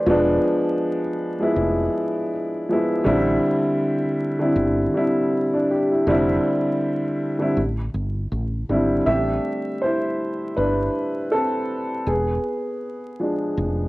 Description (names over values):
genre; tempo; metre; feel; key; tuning
lo-fi hip hop; 80 BPM; 4/4; swing 55% on 16ths; A minor; A4 = 440 Hz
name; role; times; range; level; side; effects
dark upright piano; accompaniment; 0.0-13.9 s; D3 to E5; -20 LUFS; equal; low-pass filter, cassette tape, plate reverb
woody fretless electric bass; bass; 0.1-13.9 s; E1 to A1; -25 LUFS; equal; none
room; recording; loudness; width
moderate studio reverb, RT60 0.6 s; home recording on cassette, vinyl crackle; -20 LUFS; side -20 dB against mid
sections
0.0-9.1 A section; 9.1-13.9 B section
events
upright piano solo 9.1-13.9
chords
0.1 E7b9; 3.1 Am7 (rootless); 6.1 Fsus2; 7.6 Am7; 9.1 Am11; 12.1 E7b9